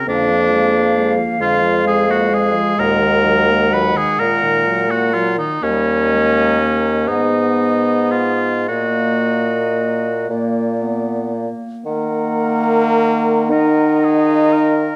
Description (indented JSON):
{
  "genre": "classical, slow romantic movement for wind quintet",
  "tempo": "35-46 BPM (dotted quarters)",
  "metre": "6/8",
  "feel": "rubato",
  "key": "Eb minor",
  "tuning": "A4 = 435 Hz",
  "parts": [
    { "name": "mellow concert flute", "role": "melody", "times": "0.0-15.0 s", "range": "Bb4 to Gb5", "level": "-26 LUFS", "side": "equal", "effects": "none" },
    { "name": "warm oboe", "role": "second line", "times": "0.0-15.0 s", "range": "Db4 to Cb5", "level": "-21 LUFS", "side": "equal", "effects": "none" },
    { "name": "mellow French horn", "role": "accompaniment", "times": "0.0-15.0 s", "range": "Bb2 to Eb4", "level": "-23 LUFS", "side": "equal", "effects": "none" },
    { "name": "mellow clarinet", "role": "accompaniment", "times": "0.0-15.0 s", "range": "G3 to Gb5", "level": "-26 LUFS", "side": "equal", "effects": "none" },
    { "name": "mellow bassoon", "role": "bass", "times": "0.1-15.0 s", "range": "Eb2 to Eb3", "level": "-21 LUFS", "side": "equal", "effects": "none" }
  ],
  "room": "moderate recital hall reverb, RT60 1.3 s",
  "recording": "none",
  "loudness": "-16 LUFS",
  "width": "mono",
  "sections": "0.0-11.9 A section; 11.9-15.0 B section",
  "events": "none",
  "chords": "0.1 Bb7/F; 2.8 Ebm; 5.6 Eb5; 7.1 Abm; 8.7 Ebm/Bb; 10.3 Bb; 11.9 Ebm"
}